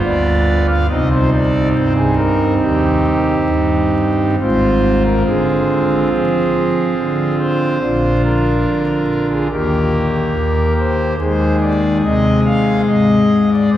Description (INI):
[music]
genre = classical, chorale-style piece for pipe organ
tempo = 70 BPM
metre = 4/4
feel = rubato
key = unclear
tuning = A4 = 441 Hz
[part]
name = pipe organ, foundations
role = solo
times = 0.0-13.8 s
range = Ab1 to F5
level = -13 LUFS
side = equal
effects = none
[sound]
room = wet church reverb, RT60 4.0 s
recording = recorded in a church or concert hall, vinyl crackle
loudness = -13 LUFS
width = side -12 dB against mid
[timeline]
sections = 0.0-13.8 A section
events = none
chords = 0.0 G7 (rootless); 0.9 Cm; 4.4 Fm/Ab; 7.8 Bb; 9.5 Eb; 11.2 Ab6/Eb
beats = 0.04 | 0.90 1.75 2.61 3.49 | 4.39 5.26 6.11 6.96 | 7.81 8.67 9.51 10.35 | 11.19 12.04 12.88 13.73